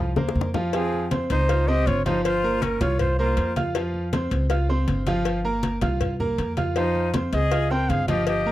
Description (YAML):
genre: latin, Cuban son and guajira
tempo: 159 BPM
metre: 4/4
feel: straight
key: F minor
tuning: A4 = 438 Hz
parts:
  - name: bright grand piano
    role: arpeggios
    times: 0.0-8.5 s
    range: F3 to F6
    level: -26 LUFS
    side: right 1 dB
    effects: none
  - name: upright bass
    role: bass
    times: 0.0-8.5 s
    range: G1 to F2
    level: -26 LUFS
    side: equal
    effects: none
  - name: bongos and cowbell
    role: percussion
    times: 0.2-8.5 s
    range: none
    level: -31 LUFS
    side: left 10 dB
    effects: none
  - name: congas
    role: percussion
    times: 0.2-8.5 s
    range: none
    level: -29 LUFS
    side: left 1 dB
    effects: none
  - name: trumpet with bucket mute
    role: melody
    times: 0.7-3.5, 6.8-8.5 s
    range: Ab4 to G5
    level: -26 LUFS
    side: right 1 dB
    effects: none
  - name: breathy bright silver concert flute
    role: second line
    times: 0.7-3.5, 6.8-8.5 s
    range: C4 to Bb4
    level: -31 LUFS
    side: left 10 dB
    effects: none
room: studio reverb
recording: dry, close 1970s-style studio recording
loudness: -21 LUFS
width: side -14 dB against mid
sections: 0.7-8.5 A section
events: drum fill 0.2-0.7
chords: 0.0 C7sus4; 0.7 Fm; 1.5 Dbmaj7; 2.2 Bbm69/G; 3.0 C7sus4; 3.8 F5; 4.5 Dbmaj7; 5.3 Gm7; 6.0 C7sus4; 6.8 F5; 7.5 Dbmaj7